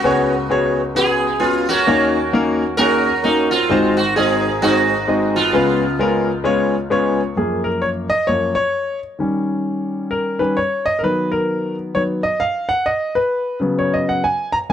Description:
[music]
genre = uptempo gospel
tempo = 131 BPM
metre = 4/4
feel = swing 62% on 8ths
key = unclear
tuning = A4 = 440 Hz
[part]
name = sitar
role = melody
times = 0.0-7.2 s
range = G#3 to A#4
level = -18 LUFS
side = right 3 dB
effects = tape echo
[part]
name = clear grand piano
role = accompaniment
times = 0.0-14.7 s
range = G#1 to C#6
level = -17 LUFS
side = left 1 dB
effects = none
[sound]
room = studio ambience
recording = dry, close 1970s-style studio recording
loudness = -16 LUFS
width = side -9 dB against mid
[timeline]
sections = 0.0-7.4 A section; 7.4-14.7 B section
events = grand piano fill 6.7-7.4; grand piano solo 7.4-14.7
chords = 0.0 C#7sus4; 1.9 D#m7; 3.7 G#7; 5.5 C#7; 7.4 F#maj7; 9.2 D#7; 11.0 Bmaj7#11/D#; 12.9 C#7sus4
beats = | 0.04 0.50 0.96 1.42 | 1.87 2.33 2.79 3.25 | 3.70 4.16 4.62 5.08 | 5.53 5.99 6.45 6.91 | 7.37 7.82 8.28 8.74 | 9.20 9.66 10.12 10.58 | 11.04 11.49 11.95 12.41 | 12.87 13.33 13.79 14.25 | 14.71

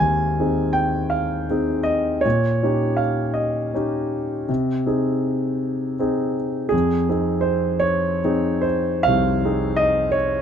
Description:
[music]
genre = classical, romantic nocturne for solo piano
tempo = 54 BPM (dotted quarters)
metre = 12/8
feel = rubato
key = Ab major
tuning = A4 = 437 Hz
[part]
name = warm concert grand piano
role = solo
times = 0.0-10.4 s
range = C2 to Ab5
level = -19 LUFS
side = equal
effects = none
[sound]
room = light reverb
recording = close, detailed microphones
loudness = -19 LUFS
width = side -8 dB against mid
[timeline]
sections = 0.0-10.4 A section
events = none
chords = 0.0 Ab; 2.2 Eb7/Bb; 4.5 Ab/C; 6.7 Fm7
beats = 1.12 | 2.25 3.38 4.49 5.62 | 6.73 7.84 9.05 10.15

